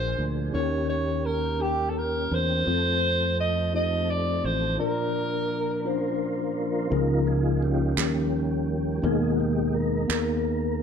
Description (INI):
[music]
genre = slow gospel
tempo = 56 BPM (dotted quarters)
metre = 6/8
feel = straight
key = Eb major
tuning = A4 = 440 Hz
[part]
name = breathy alto saxophone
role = melody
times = 0.0-6.2 s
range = G4 to Eb5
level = -27 LUFS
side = right 1 dB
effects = tape echo
[part]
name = mellow tine electric piano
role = accompaniment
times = 0.0-10.8 s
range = Bb2 to D5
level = -28 LUFS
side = left 4 dB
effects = medium stereo tremolo
[part]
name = mellow tonewheel organ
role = sustained chords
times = 0.0-10.8 s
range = Cb3 to C5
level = -31 LUFS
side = right 3 dB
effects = fast rotary speaker, chorus vibrato
[part]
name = fingered electric bass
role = bass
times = 0.0-10.8 s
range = A1 to F2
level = -28 LUFS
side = equal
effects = none
[part]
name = group handclap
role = percussion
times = 8.0-10.4 s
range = none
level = -30 LUFS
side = right 8 dB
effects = none
[sound]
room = light reverb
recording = none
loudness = -23 LUFS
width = side -7 dB against mid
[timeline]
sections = 0.0-6.9 A section; 6.9-10.8 B section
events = break 4.8-6.9; tonewheel organ solo 6.9-10.8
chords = 0.0 Bb7; 0.5 Eb7; 2.7 F; 4.8 Bb; 6.9 Db69; 8.0 Eb7; 9.0 Abmadd9/Eb